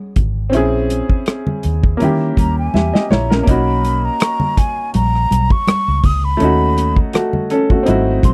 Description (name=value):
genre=lush 1970s-style soul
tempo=82 BPM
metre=4/4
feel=swing 54% on 16ths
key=unclear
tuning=A4 = 441 Hz
part: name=clear baby grand piano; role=accompaniment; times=0.0-8.3 s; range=A3 to E5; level=-20 LUFS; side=equal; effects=none
part: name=vintage muted fingered electric bass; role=bass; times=0.2-8.3 s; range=G#1 to D#3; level=-20 LUFS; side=equal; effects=none
part: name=modern studio drum kit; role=drums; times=0.2-8.3 s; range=hi-hat, kick drum, rim click, snare drum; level=-18 LUFS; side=equal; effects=none
part: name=congas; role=percussion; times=0.2-8.3 s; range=none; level=-25 LUFS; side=equal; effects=none
part: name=breathy mellow silver concert flute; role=melody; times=2.4-8.3 s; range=G#5 to D#6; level=-22 LUFS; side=equal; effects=none
part: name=large celesta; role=texture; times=4.2-5.0 s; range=C#6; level=-33 LUFS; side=equal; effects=none
room=light reverb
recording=dry, close 1970s-style studio recording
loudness=-16 LUFS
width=mono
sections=0.0-3.5 A section; 3.5-8.3 B section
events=drum fill 2.7-3.5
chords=0.0 E6 (rootless); 0.5 A#m7b5; 2.0 D#7b9; 3.5 Bmaj9; 6.4 D#m7b5